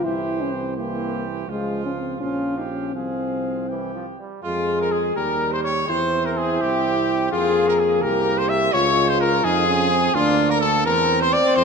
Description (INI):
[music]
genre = classical, brass quintet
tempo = 84 BPM (dotted quarters)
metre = 6/8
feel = straight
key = F minor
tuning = A4 = 441 Hz
[part]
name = warm cornet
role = melody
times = 0.0-11.6 s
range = F4 to G5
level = -24 LUFS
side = left 6 dB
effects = none
[part]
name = bright trombone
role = accompaniment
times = 0.0-11.6 s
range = E3 to C4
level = -30 LUFS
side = right 4 dB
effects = none
[part]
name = mellow French horn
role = accompaniment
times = 0.0-11.6 s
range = Ab3 to Ab4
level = -23 LUFS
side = left 2 dB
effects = none
[part]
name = mellow tuba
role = bass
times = 0.0-11.6 s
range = Bb1 to F2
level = -27 LUFS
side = right 6 dB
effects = none
[part]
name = clear trumpet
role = second line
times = 0.1-11.6 s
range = F4 to E5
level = -26 LUFS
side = right 8 dB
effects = none
[sound]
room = moderate scoring stage reverb, RT60 2.0 s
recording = none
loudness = -18 LUFS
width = side -5 dB against mid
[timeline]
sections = 0.0-4.4 A section; 4.4-11.6 B section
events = none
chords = 0.0 C7; 1.5 Db; 2.2 Bbm; 2.9 Fm/C; 3.7 C; 4.4 Fm; 5.2 Eb; 5.9 C/E; 7.3 Fm; 8.0 C5; 8.7 Db; 10.1 Bb/D; 10.9 C7/E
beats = | 0.05 0.77 | 1.48 2.20 | 2.94 3.69 | 4.44 5.16 | 5.89 6.61 | 7.33 8.04 | 8.74 9.45 | 10.15 10.86 | 11.57